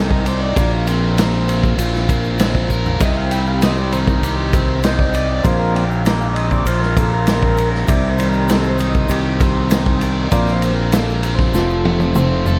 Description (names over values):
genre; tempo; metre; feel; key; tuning
psychedelic rock; 98 BPM; 4/4; straight; C dorian; A4 = 439 Hz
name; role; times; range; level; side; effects
combo organ; sustained chords; 0.0-12.6 s; Eb3 to G5; -25 LUFS; equal; subtle chorus
biting overdriven guitar; riff; 0.0-12.6 s; C3 to D5; -24 LUFS; equal; phaser, dub echo
fuzz fingered electric bass; bass; 0.0-12.6 s; F1 to C2; -21 LUFS; equal; overdrive
vintage drum kit; drums; 0.1-12.6 s; kick drum, ride cymbal, snare drum, toms; -21 LUFS; equal; none
egg shaker; percussion; 0.3-12.6 s; none; -40 LUFS; equal; none
room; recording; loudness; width
small room ambience; echo-heavy mix; -17 LUFS; mono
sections
0.0-12.6 A section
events
transistor combo organ solo 0.0-12.6; drum fill 2.7-3.0, 11.5-12.6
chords
0.0 Cmadd9; 0.6 Bbsus2; 3.0 Cmadd9; 5.4 Bbsus2; 7.9 Cmadd9; 10.3 Bbsus2; 11.5 F